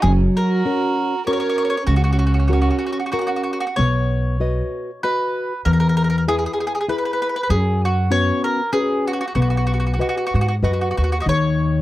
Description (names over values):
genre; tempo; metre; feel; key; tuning
italian folk, Italian serenade; 97 BPM; 3/4; swing 55% on 8ths, rubato; F# major, B major from 3.8 s; A4 = 440 Hz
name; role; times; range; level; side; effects
mandolin; melody; 0.0-11.8 s; F#4 to D#5; -23 LUFS; right 1 dB; none
nylon-string guitar; accompaniment; 0.0-11.8 s; C#3 to D#5; -22 LUFS; left 2 dB; none
upright bass; bass; 0.0-11.8 s; F#1 to G#2; -19 LUFS; equal; none
warm violin; second line; 0.1-3.5 s; C#4 to A#4; -24 LUFS; right 6 dB; none
room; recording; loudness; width
small room ambience; dry, close 1970s-style studio recording; -17 LUFS; side -15 dB against mid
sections
0.0-3.8 A section; 3.8-11.8 B section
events
none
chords
0.0 F#; 3.8 B; 5.6 E; 7.5 F#sus4; 9.3 B; 11.3 D#7(no3)